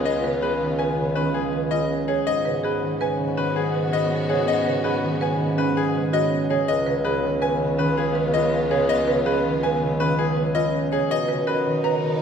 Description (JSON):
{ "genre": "classical, minimalist pattern music", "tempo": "163 BPM", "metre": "6/4", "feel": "straight", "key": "Db mixolydian", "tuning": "A4 = 440 Hz", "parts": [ { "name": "bright grand piano", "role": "melody", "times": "0.0-12.1 s", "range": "Ab4 to Bb5", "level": "-25 LUFS", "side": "left 6 dB", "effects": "none" }, { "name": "concert harp", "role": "accompaniment", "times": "0.0-12.2 s", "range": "Db3 to Db4", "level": "-26 LUFS", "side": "right 2 dB", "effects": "none" }, { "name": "warm symphonic string section", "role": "sustained chords", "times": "0.0-12.2 s", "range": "Cb4 to Bb4", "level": "-32 LUFS", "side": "left 1 dB", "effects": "none" }, { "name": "buzzing marimba with medium hard mallets", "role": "arpeggios", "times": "0.0-12.1 s", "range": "Db4 to Db5", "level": "-28 LUFS", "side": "right 6 dB", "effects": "none" }, { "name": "mellow bassoon", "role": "bass", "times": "0.0-12.2 s", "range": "Db2 to Cb3", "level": "-26 LUFS", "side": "equal", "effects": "none" } ], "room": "wet cathedral reverb, RT60 4.9 s", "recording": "recorded in a church or concert hall", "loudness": "-20 LUFS", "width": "side -7 dB against mid", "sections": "0.0-12.2 A section", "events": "none", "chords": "0.0 Db7; 2.3 Abm7; 6.7 Db7; 11.1 Cbmaj7", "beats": "| 0.06 0.43 0.80 1.17 1.53 1.90 | 2.27 2.64 3.01 3.38 3.74 4.11 | 4.48 4.85 5.22 5.58 5.95 6.32 | 6.69 7.06 7.42 7.79 8.16 8.53 | 8.90 9.27 9.63 10.00 10.37 10.74 | 11.11 11.47 11.84 12.21" }